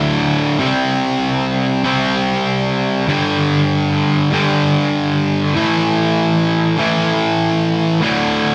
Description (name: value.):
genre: rock.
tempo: 97 BPM.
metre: 4/4.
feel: straight.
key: unclear.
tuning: A4 = 441 Hz.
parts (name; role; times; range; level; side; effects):
sludgy distorted guitar; solo; 0.0-8.5 s; D2 to C4; -16 LUFS; equal; overdrive.
room: wet studio reverb, RT60 0.6 s.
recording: band playing live in one room.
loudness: -16 LUFS.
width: mono.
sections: 0.0-8.5 A section.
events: none.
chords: 0.0 D5; 0.6 C5; 3.1 G5; 5.6 A5; 8.0 D5.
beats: | 0.61 1.23 1.85 2.46 | 3.08 3.70 4.32 4.94 | 5.55 6.17 6.79 7.40 | 8.02.